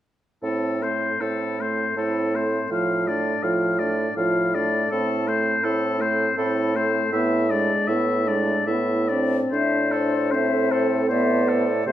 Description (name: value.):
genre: classical, slow romantic movement for wind quintet.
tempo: 68-84 BPM.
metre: 3/4.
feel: rubato.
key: A minor.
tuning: A4 = 441 Hz.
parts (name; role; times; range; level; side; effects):
clear oboe; second line; 0.4-11.9 s; A4 to F5; -25 LUFS; left 4 dB; none.
mellow French horn; accompaniment; 0.4-11.9 s; F3 to D4; -27 LUFS; equal; none.
mellow clarinet; accompaniment; 0.4-11.9 s; C4 to D5; -29 LUFS; right 4 dB; none.
mellow bassoon; bass; 0.4-11.9 s; A2 to C3; -25 LUFS; right 1 dB; none.
concert flute; melody; 9.6-11.9 s; C5 to E5; -27 LUFS; left 7 dB; none.
room: wet recital hall reverb, RT60 1.6 s.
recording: none.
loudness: -20 LUFS.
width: side -12 dB against mid.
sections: 0.4-9.5 A section; 9.5-11.9 B section.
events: none.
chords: 0.4 Am; 2.7 Dm/A; 4.9 Am; 7.1 E7/A; 9.5 Am.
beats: | 0.42 1.21 1.98 | 2.71 3.44 4.17 | 4.93 5.66 6.39 | 7.14 7.89 8.68 | 9.53 10.33 11.10 | 11.87.